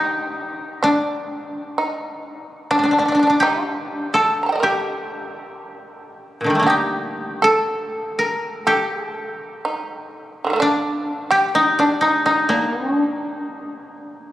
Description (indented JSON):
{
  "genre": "japanese traditional, Japanese chamber music",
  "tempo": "59-65 BPM",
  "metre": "2/4",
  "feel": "rubato",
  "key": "D miyako bushi",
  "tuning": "A4 = 440 Hz",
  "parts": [
    { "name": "koto", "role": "melody", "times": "0.0-14.3 s", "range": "Bb2 to Bb4", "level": "-19 LUFS", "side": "left 1 dB", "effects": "none" },
    { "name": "shamisen", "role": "second line", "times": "0.0-14.0 s", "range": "D3 to Bb5", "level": "-24 LUFS", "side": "right 2 dB", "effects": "none" }
  ],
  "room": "wet cathedral reverb, RT60 4.4 s",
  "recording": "recorded on a phone in the room, studio reverb, compression",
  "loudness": "-17 LUFS",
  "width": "side -14 dB against mid",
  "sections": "0.0-14.3 A section",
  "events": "none",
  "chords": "none"
}